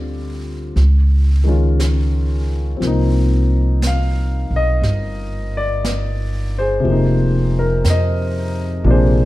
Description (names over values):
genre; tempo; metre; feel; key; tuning
jazz ballad; 60 BPM; 4/4; swing 68% on 8ths; unclear; A4 = 441 Hz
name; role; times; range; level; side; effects
warm grand piano; accompaniment; 0.0-9.2 s; C3 to F5; -20 LUFS; left 2 dB; none
upright bass; bass; 0.0-9.2 s; F1 to F2; -16 LUFS; equal; none
jazz brush drum kit; drums; 0.8-9.2 s; brushed snare drum, hi-hat, snare drum; -31 LUFS; right 2 dB; none
room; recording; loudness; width
light reverb; dark, warm production; -15 LUFS; side -17 dB against mid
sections
0.0-9.2 A section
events
none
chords
0.0 G7sus4/D; 0.8 Dbadd9; 2.8 Cm7; 6.8 Fm7